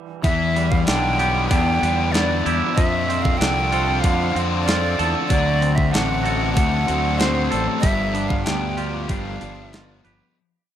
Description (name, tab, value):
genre	rock, shoegaze and dream pop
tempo	95 BPM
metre	4/4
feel	straight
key	unclear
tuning	A4 = 440 Hz
part	breathy bright jazz flute	melody	0.2-10.0 s	C5 to G5	-24 LUFS	equal	tape echo
part	twangy electric guitar	arpeggios	0.2-10.4 s	F3 to A4	-31 LUFS	left 2 dB	wide subtle chorus, tape echo
part	thick fuzz guitar	riff	0.2-10.4 s	G2 to C5	-25 LUFS	left 10 dB	distortion, analog chorus
part	twangy electric guitar	riff	0.2-10.4 s	D3 to B4	-26 LUFS	right 9 dB	reverse reverb
part	fuzz fingered electric bass	bass	0.2-10.2 s	G1 to F2	-24 LUFS	equal	overdrive
part	crisp 8-bit digital drum machine	drums	0.2-10.2 s	hi-hat, kick drum, snare drum	-22 LUFS	equal	overdrive
room	light reverb, digital ambience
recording	none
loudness	-17 LUFS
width	side -10 dB against mid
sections	0.2-10.4 verse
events	fade-out 7.8-10.4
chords	0.2 Em7; 2.8 F6; 5.3 D7; 7.8 G7